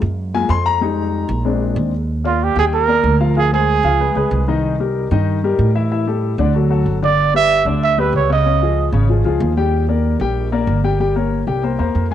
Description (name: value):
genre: Afro-Cuban jazz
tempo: 189 BPM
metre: 4/4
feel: straight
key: Eb major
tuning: A4 = 440 Hz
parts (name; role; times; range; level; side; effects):
- upright bass; bass; 0.0-12.1 s; G1 to A2; -18 LUFS; right 1 dB; none
- warm grand piano; accompaniment; 0.3-12.1 s; Db3 to C6; -19 LUFS; left 6 dB; cassette tape
- breathy trumpet; melody; 2.3-4.4, 7.0-8.9 s; F4 to E5; -16 LUFS; right 7 dB; cassette tape
room: moderate spring reverb, RT60 2.4 s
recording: home recording on cassette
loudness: -14 LUFS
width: side -10 dB against mid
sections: 0.0-2.1 A section; 2.1-12.1 B section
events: grand piano solo 0.0-2.1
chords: 0.0 Gbmaj9; 0.8 Fm9; 1.5 Bb7; 2.1 Ebmaj7; 3.4 Dm7b5; 4.0 Dbsus2; 4.6 Cm7; 5.9 A7sus4; 6.5 D; 7.2 G6; 8.5 Dbadd9; 9.7 Ebmaj7; 11.0 Gdim; 11.6 C7